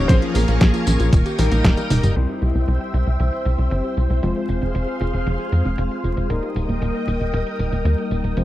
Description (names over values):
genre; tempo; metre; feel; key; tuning
italo disco; 116 BPM; 4/4; straight; unclear; A4 = 439 Hz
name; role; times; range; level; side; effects
dark concert grand piano; melody; 0.0-1.4 s; Bb3 to C5; -25 LUFS; left 1 dB; tape echo
string machine, full ensemble; sustained chords; 0.0-8.4 s; Ab4 to E6; -28 LUFS; equal; ensemble chorus
warbly dusty pluck; arpeggios; 0.0-8.4 s; Eb3 to C5; -30 LUFS; right 3 dB; chorus, tape echo
chorused polysynth; stabs; 0.0-8.4 s; F3 to C5; -26 LUFS; left 2 dB; cassette tape
tight sequencer bass; bass; 0.0-8.4 s; Eb1 to F2; -20 LUFS; equal; none
detuned 8-bit digital drum machine; drums; 0.1-8.4 s; crash cymbal, hi-hat, snare drum, tambourine, toms; -23 LUFS; equal; low-pass filter on hats, low-pass filter on perc, low-pass filter on snare, low-pass filter on toms, low-pass filter on cymbals
electronic kick drum; drums; 0.1-1.7 s; none; -16 LUFS; equal; none
room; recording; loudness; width
little or no reverb; dry, close 1970s-style studio recording, vinyl crackle; -18 LUFS; side -14 dB against mid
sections
0.0-2.2 A section; 2.2-8.4 B section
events
band accent 1.6; drum fill 1.8-2.2; filter sweep on string machine 2.2-8.4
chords
0.1 Bbm7; 1.1 Eb; 2.2 C; 4.2 Fm; 6.3 Eb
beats
| 0.09 0.61 1.13 1.64 | 2.16 2.68 3.20 3.71 | 4.23 4.75 5.26 5.78 | 6.30 6.82 7.33 7.85 | 8.37